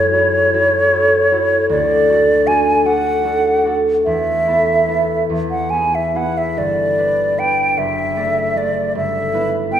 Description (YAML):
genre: classical, romantic duo for flute and harp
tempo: 46-53 BPM (dotted quarters)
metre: 6/8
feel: rubato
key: D major from 6.6 s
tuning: A4 = 440 Hz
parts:
  - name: hollow concert flute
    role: melody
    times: 0.0-9.8 s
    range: C#5 to G#5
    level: -16 LUFS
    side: right 1 dB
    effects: none
  - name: concert harp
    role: accompaniment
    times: 0.0-9.8 s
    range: F#1 to D5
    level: -18 LUFS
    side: left 1 dB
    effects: none
room: wet scoring stage reverb, RT60 2.1 s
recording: recorded in a church or concert hall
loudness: -14 LUFS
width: side -9 dB against mid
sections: 0.0-9.8 A section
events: none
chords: 0.0 F#m7; 1.7 D; 4.1 Esus4; 5.3 E; 6.6 G; 7.8 D/F#; 9.0 Em/G